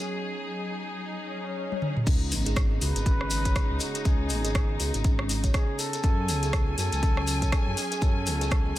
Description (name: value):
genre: afro house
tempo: 121 BPM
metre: 4/4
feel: swing 59% on 16ths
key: unclear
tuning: A4 = 440 Hz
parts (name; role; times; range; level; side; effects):
- trumpet with bucket mute; melody; 0.0-8.8 s; F#4 to B4; -35 LUFS; left 1 dB; ping-pong delay
- dark studio string section; sustained chords; 0.0-8.8 s; C#3 to G#5; -35 LUFS; left 1 dB; sidechain pumping
- kalimba; arpeggios; 0.0-8.8 s; B3 to C#5; -36 LUFS; right 2 dB; sidechain pumping, ping-pong delay
- swell and sub drop; sound effects; 1.3-4.1 s; none; -36 LUFS; left 2 dB; none
- afro-pop drum kit; drums; 1.7-8.8 s; crash cymbal, hi-hat, rim click, toms; -32 LUFS; equal; none
- dark detuned saw bass; bass; 2.1-8.8 s; G#1 to F#2; -29 LUFS; equal; sidechain pumping
- electronic kick drum; drums; 2.1-8.6 s; none; -24 LUFS; equal; none
- shekere; percussion; 2.1-8.8 s; none; -36 LUFS; left 3 dB; none
room: small room ambience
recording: none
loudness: -24 LUFS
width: side -15 dB against mid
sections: 0.0-2.1 A section; 2.1-8.8 B section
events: swell 1.3-2.1; drum fill 1.7-2.1; drop 2.1-8.8; impact 2.1-4.1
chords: 0.0 F#5; 2.1 C#5; 6.0 F#m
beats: | 0.09 0.58 1.08 1.57 | 2.07 2.56 3.06 3.56 | 4.05 4.55 5.04 5.54 | 6.04 6.53 7.03 7.52 | 8.02 8.52